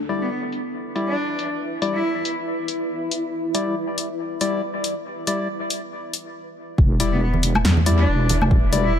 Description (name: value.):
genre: deep dubstep.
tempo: 139 BPM.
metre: 4/4.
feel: swing 57% on 16ths, half-time.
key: E minor.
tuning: A4 = 442 Hz.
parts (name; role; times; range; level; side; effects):
granular cloud pad; sustained chords; 0.0-9.0 s; E4 to E5; -30 LUFS; equal; built-in reverb.
percussive organ stab; stabs; 0.1-8.9 s; G3 to D5; -26 LUFS; left 3 dB; chorus, dub echo.
deep house drum kit; drums; 0.1-8.8 s; hi-hat, snare drum, woodblock; -25 LUFS; left 2 dB; overdrive, low-pass filter on hats, low-pass filter on perc, low-pass filter on snare, low-pass filter on room, dub echo.
rich cello; melody; 0.2-2.3, 7.1-9.0 s; B3 to E4; -28 LUFS; equal; dub echo.
deep soft wobble bass; bass; 6.8-9.0 s; E1 to E2; -19 LUFS; equal; chorus, tube saturation.
electronic kick drum; drums; 6.8-8.6 s; none; -16 LUFS; equal; overdrive.
congas; percussion; 7.3-8.5 s; none; -28 LUFS; right 3 dB; dub echo.
room: light reverb, digital ambience.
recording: echo-heavy mix.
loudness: -20 LUFS.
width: side -9 dB against mid.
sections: 0.0-6.8 A section; 6.8-9.0 B section.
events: break 6.4-6.8; drop 6.8-9.0.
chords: 0.0 Em7.